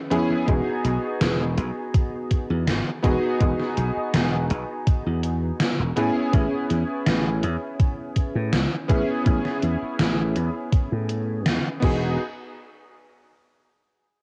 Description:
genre	vaporwave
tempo	82 BPM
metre	4/4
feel	straight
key	E major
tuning	A4 = 440 Hz
part	clear electric grand piano	accompaniment	0.0-12.2 s	B3 to G#4	-28 LUFS	equal	ensemble chorus, cassette tape, analog delay
part	gated 80s digital drum machine	drums	0.1-12.0 s	congas, crash cymbal, hi-hat, snare drum	-28 LUFS	equal	gated reverb, gated reverb snare, studio reverb
part	slap bass	bass	0.5-12.2 s	E1 to A2	-27 LUFS	equal	tube saturation, low-pass filter
part	electronic kick drum	drums	0.5-12.0 s	none	-22 LUFS	equal	studio reverb
room	light reverb, digital ambience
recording	home recording on cassette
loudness	-23 LUFS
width	mono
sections	0.5-12.2 A section; 12.2-14.2 B section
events	break 0.0-0.5; filter sweep on slap bass 0.5-12.2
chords	0.5 Emaj9; 6.0 Amaj9; 11.8 Emaj9; 12.2 N.C.

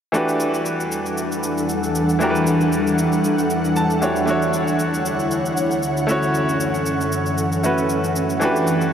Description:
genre	amapiano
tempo	116 BPM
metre	4/4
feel	swing 55% on 16ths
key	E dorian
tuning	A4 = 439 Hz
part	bright grand piano	accompaniment	0.1-8.9 s	E3 to A5	-21 LUFS	equal	none
part	ethereal airy pad	sustained chords	0.7-8.9 s	D2 to F#5	-20 LUFS	equal	ensemble chorus, built-in reverb
part	shaker	drums	0.1-8.9 s	none	-33 LUFS	left 1 dB	none
room	wet huge ambient reverb, RT60 7.8 s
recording	dreamy mix soaked in reverb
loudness	-18 LUFS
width	side -8 dB against mid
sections	0.1-8.9 A section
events	grand piano fill 3.5-4.3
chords	0.1 Em11; 4.3 Dmaj7; 6.1 F#m7; 8.4 Em11

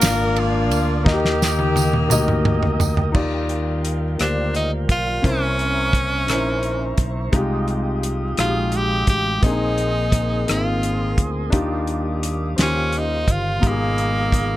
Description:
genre	slow gospel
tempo	57 BPM (dotted quarters)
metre	6/8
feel	straight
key	Eb major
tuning	A4 = 440 Hz
part	warm horn section	melody	0.0-2.8 s	Bb3 to Bb4	-24 LUFS	left 1 dB	tape echo
part	warm concert grand piano	accompaniment	0.0-14.6 s	Ab2 to F5	-24 LUFS	left 3 dB	none
part	mellow tonewheel organ	sustained chords	0.0-14.6 s	Ab3 to Eb6	-31 LUFS	right 3 dB	fast rotary speaker
part	fingered electric bass	bass	0.0-14.6 s	G1 to Eb2	-24 LUFS	right 1 dB	none
part	warm soul drum kit	drums	0.0-14.5 s	crash cymbal, hi-hat, kick drum, ride cymbal, rim click, snare drum, toms	-21 LUFS	equal	none
part	tambourine	percussion	0.0-3.1 s	none	-27 LUFS	right 10 dB	none
part	dark French horn section	sustained chords	3.1-14.6 s	Cb3 to D5	-34 LUFS	equal	none
part	edgy tenor saxophone	melody	4.2-14.6 s	Bb3 to G4	-23 LUFS	equal	none
room	little or no reverb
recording	none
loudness	-18 LUFS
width	side -15 dB against mid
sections	0.0-3.1 A section; 3.1-14.6 B section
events	drum fill 1.1-3.1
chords	0.0 Bb; 1.1 Eb; 3.1 Ebmaj9; 5.2 C7b9; 7.3 Fm9/C; 9.4 Bb9sus4; 11.5 Ebmaj9; 12.6 Eb13; 13.6 Abm6

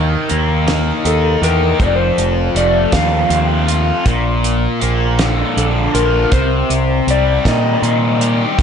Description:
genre	psychedelic rock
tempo	53 BPM (dotted quarters)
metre	6/8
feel	straight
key	C dorian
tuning	A4 = 441 Hz
part	thick fuzz guitar	riff	0.0-8.6 s	F2 to G4	-17 LUFS	left 1 dB	distortion, phaser
part	growling picked electric bass	bass	0.0-8.6 s	F1 to Bb2	-16 LUFS	equal	overdrive
part	tanpura	drone	0.0-6.3 s	none	barely audible	none	none
part	damped 70s drum kit	drums	0.3-8.6 s	hi-hat, kick drum, snare drum	-19 LUFS	right 1 dB	none
part	electric slide guitar	melody	1.1-8.3 s	A4 to F5	-18 LUFS	left 2 dB	lush chorus, analog delay
room	moderate plate reverb, RT60 2.4 s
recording	dreamy mix soaked in reverb, nothing above 10.4 kHz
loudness	-12 LUFS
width	side -7 dB against mid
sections	0.0-8.6 A section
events	none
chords	0.0 Eb; 1.8 F; 4.1 Bb; 6.3 Cm

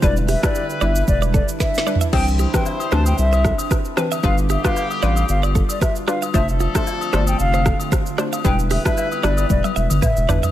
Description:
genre	afrobeats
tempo	114 BPM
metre	4/4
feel	swing 55% on 16ths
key	unclear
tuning	A4 = 440 Hz
part	hollow concert flute	melody	0.0-10.4 s	D5 to A5	-25 LUFS	left 1 dB	tape echo
part	warm horn section	second line	0.0-10.3 s	D3 to C5	-30 LUFS	left 2 dB	none
part	hollow square pluck	accompaniment	0.0-10.5 s	E3 to C5	-26 LUFS	left 4 dB	chorus
part	airy breathy pad	sustained chords	0.0-10.5 s	D3 to F4	-30 LUFS	right 2 dB	chorus
part	direct-recorded clean electric guitar	riff	0.0-10.5 s	F4 to F5	-28 LUFS	right 10 dB	tape echo
part	saturated sub bass	bass	0.0-10.4 s	E1 to D2	-19 LUFS	equal	none
part	afro-pop drum kit	drums	0.0-10.5 s	crash cymbal, hi-hat, kick drum, rim click, shaker, snare drum, toms	-21 LUFS	equal	none
part	agogo bells and woodblock	percussion	2.1-10.5 s	none	-30 LUFS	left 12 dB	none
room	digital ambience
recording	none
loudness	-16 LUFS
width	side -13 dB against mid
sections	0.0-10.5 A section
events	drum fill 1.6-2.1, 9.5-10.5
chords	0.0 Em7; 2.1 Cmaj9; 4.2 G7; 6.3 F6; 8.4 Em7

